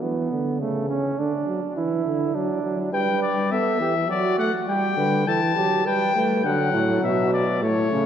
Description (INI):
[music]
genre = classical, imitative canzona for brass ensemble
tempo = 103 BPM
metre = 3/4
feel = straight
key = G major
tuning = A4 = 441 Hz
[part]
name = mellow flugelhorn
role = second line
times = 0.0-6.4 s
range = A3 to B4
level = -26 LUFS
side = right 5 dB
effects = none
[part]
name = mellow trombone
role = accompaniment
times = 0.0-8.1 s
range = C#3 to B3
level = -25 LUFS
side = right 1 dB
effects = none
[part]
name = warm trumpet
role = melody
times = 2.9-8.1 s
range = C#5 to A5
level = -23 LUFS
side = left 5 dB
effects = none
[part]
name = clear bass trombone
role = bass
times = 6.4-8.1 s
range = A2 to D3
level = -24 LUFS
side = right 1 dB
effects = none
[sound]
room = wet church reverb, RT60 2.7 s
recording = dark, warm production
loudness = -20 LUFS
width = side -9 dB against mid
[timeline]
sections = 0.0-8.1 A section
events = none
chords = 0.0 N.C.; 0.6 A/C#; 1.2 D; 2.4 D/F#; 2.9 G; 4.1 D/F#; 4.7 G; 6.5 D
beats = 0.02 0.60 | 1.19 1.77 2.35 | 2.94 3.52 4.10 | 4.69 5.28 5.86 | 6.45 7.04 7.63